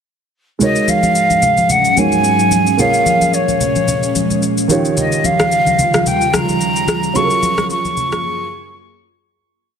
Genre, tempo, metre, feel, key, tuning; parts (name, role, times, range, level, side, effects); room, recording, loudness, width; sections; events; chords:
amapiano; 110 BPM; 4/4; swing 55% on 16ths; A4 = 440 Hz
breathy mellow jazz flute; melody; 0.6-8.8 s; Db5 to Db6; -15 LUFS; equal; ping-pong delay
dark grand piano; accompaniment; 0.6-9.4 s; Eb3 to Db5; -20 LUFS; right 4 dB
ethereal airy pad; sustained chords; 1.2-9.3 s; Eb2 to Ab4; -20 LUFS; equal; ensemble chorus, built-in reverb
electronic shaker and rim click; drums; 0.6-8.2 s; -21 LUFS; left 2 dB; overdrive
congas; percussion; 0.6-8.2 s; -21 LUFS; left 2 dB
light reverb, small room ambience; -12 LUFS; side -7 dB against mid
0.6-9.3 breakdown
fade-out 7.2-9.3; break 8.2-9.3
0.6 Ab7sus4; 2.8 Bbm7; 4.7 Eb9; 7.2 Gbmaj9